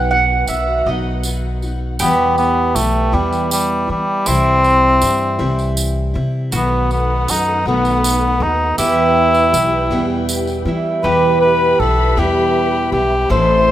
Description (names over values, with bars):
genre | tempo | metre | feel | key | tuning
acoustic folk duo or small band | 53 BPM (dotted quarters) | 6/8 | straight | E harmonic minor | A4 = 440 Hz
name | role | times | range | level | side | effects
mandolin | second line | 0.0-13.7 s | E4 to F#5 | -22 LUFS | right 3 dB | none
picked plugged-in steel-string acoustic guitar | accompaniment | 0.0-13.7 s | E2 to F#4 | -21 LUFS | right 1 dB | none
dark studio string section | sustained chords | 0.0-2.0, 6.5-13.7 s | D#3 to C6 | -26 LUFS | left 3 dB | none
upright bass | bass | 0.0-13.7 s | A1 to E3 | -20 LUFS | equal | none
tambourine | percussion | 0.5-10.6 s | none | -24 LUFS | right 4 dB | none
mellow cor anglais | melody | 2.0-13.7 s | G3 to C5 | -15 LUFS | left 1 dB | none
room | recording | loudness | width
light reverb | rough home demo mix | -13 LUFS | side -12 dB against mid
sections
0.0-2.0 A section; 2.0-11.0 B section; 11.0-13.7 B section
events
mandolin solo 0.0-2.0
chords
0.0 B; 2.0 Em; 4.3 C; 6.5 B7; 8.8 Em